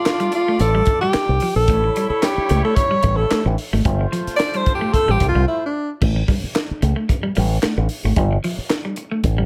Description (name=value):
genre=funk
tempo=111 BPM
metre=4/4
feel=straight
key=unclear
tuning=A4 = 440 Hz
part: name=mellow tenor saxophone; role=melody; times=0.0-5.9 s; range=D4 to D5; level=-21 LUFS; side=equal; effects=plate reverb
part: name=clear horn section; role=second line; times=0.0-5.7 s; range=G3 to D5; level=-31 LUFS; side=equal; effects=plate reverb
part: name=crisp fusion drum kit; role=drums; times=0.1-9.4 s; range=crash cymbal, handclaps, hi-hat, kick drum, snare drum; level=-24 LUFS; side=equal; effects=none
part: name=clean electric guitar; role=riff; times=0.2-9.5 s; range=F3 to A3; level=-27 LUFS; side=equal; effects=none
part: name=fingered electric bass with an envelope filter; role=bass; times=0.6-9.4 s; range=G1 to C#2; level=-21 LUFS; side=equal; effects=none
room=light reverb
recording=none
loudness=-19 LUFS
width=mono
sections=0.0-6.0 A section; 6.0-9.5 B section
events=tenor saxophone solo 0.0-6.0; break 5.5-6.0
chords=0.0 G9sus4; 1.7 A7; 3.9 G9sus4; 6.0 A7(no3); 8.2 Gsus2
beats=0.07 0.61 1.15 | 1.69 2.23 2.77 3.31 | 3.85 4.39 4.93 5.47 | 6.01 6.55 7.09 7.63 | 8.17 8.71 9.24